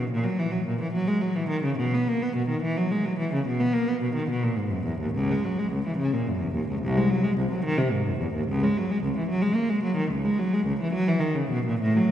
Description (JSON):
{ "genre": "classical, baroque-style suite movement for unaccompanied cello", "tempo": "72 BPM (dotted quarters)", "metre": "12/8", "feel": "rubato", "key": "unclear", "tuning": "A4 = 440 Hz", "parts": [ { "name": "rich cello", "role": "solo", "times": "0.0-12.1 s", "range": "B#1 to B3", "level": "-23 LUFS", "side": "equal", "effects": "none" } ], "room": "wet church reverb, RT60 3.4 s", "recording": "recorded in a church or concert hall, nothing above 10.8 kHz", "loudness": "-23 LUFS", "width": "side -10 dB against mid", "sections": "0.0-12.1 A section", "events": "none", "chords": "none" }